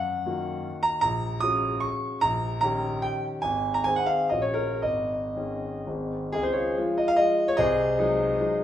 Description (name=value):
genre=classical, romantic triple-time dance for piano with dotted rhythms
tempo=110-161 BPM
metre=3/4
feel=rubato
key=Db major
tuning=A4 = 435 Hz
part: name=warm grand piano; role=solo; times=0.0-8.6 s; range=Ab1 to Eb6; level=-23 LUFS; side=equal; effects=none
room=wet recital hall reverb, RT60 1.4 s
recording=recorded in a church or concert hall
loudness=-23 LUFS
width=side -11 dB against mid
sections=0.0-6.3 A section; 6.3-8.6 B section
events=none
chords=0.0 D#m/F#; 1.0 Gb/Bb; 2.2 Eb7/Bb; 3.4 Ab; 4.3 Gb/Bb; 4.8 Absus4; 5.9 Ab; 6.3 Db; 7.6 Ab7/C